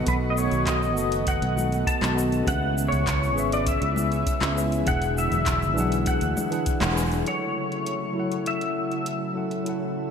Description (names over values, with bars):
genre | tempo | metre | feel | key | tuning
sunset chillout | 100 BPM | 4/4 | straight | F# minor | A4 = 442 Hz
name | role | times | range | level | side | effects
tine electric piano | accompaniment | 0.0-10.1 s | E3 to G#5 | -29 LUFS | left 1 dB | medium stereo tremolo, auto-pan, digital delay, shimmer reverb
airy breathy pad | sustained chords | 0.0-10.1 s | C#3 to F#4 | -30 LUFS | right 1 dB | chorus, shimmer reverb
fretless electric bass | bass | 0.0-7.2 s | E1 to D2 | -26 LUFS | equal | analog chorus
pedal steel guitar | melody | 0.1-9.3 s | B4 to A5 | -28 LUFS | left 2 dB | analog chorus, digital delay, shimmer reverb
deep house drum kit | drums | 0.1-9.8 s | handclaps, hi-hat, shaker | -32 LUFS | equal | overdrive, gated reverb
electronic kick drum | drums | 0.1-6.8 s | none | -29 LUFS | equal | none
congas | percussion | 0.1-6.9 s | none | -35 LUFS | left 2 dB | none
room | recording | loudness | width
moderate lush hall reverb, RT60 1.9 s | bright 1980s-style digital production | -22 LUFS | side -7 dB against mid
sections
0.0-7.3 A section; 7.3-10.1 B section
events
band accent 6.8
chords
0.0 B7; 2.5 C#m7; 4.9 E9; 7.3 F#m7